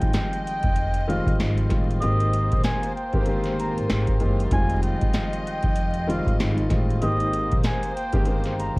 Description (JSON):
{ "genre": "hip hop, boom-bap hip-hop", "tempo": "96 BPM", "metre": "4/4", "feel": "swing 60% on 16ths", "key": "F minor", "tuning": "A4 = 440 Hz", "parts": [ { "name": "trumpet with cup mute", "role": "melody", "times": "0.0-8.8 s", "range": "Eb5 to Bb5", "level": "-29 LUFS", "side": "equal", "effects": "ping-pong delay" }, { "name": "warm upright piano", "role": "accompaniment", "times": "0.0-8.8 s", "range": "Eb3 to G4", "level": "-27 LUFS", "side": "left 1 dB", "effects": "cassette tape" }, { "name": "rich chamber string section", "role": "sustained chords", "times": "0.0-8.8 s", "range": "F3 to Eb5", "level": "-33 LUFS", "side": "equal", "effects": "none" }, { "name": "upright bass", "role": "bass", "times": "0.0-8.8 s", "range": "F1 to Bb1", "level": "-26 LUFS", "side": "equal", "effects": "none" }, { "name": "booming analog drum machine", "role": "drums", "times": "0.0-8.8 s", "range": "hi-hat, kick drum, snare drum", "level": "-25 LUFS", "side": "equal", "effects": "none" } ], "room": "little or no reverb", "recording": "worn, warbling old tape, cassette tape, vinyl crackle, warbly pitch drift", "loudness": "-20 LUFS", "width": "side -25 dB against mid", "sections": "0.0-8.8 A section", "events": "none", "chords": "0.0 Fm9; 2.0 Abmaj9; 4.5 Fm9; 7.0 Abmaj9" }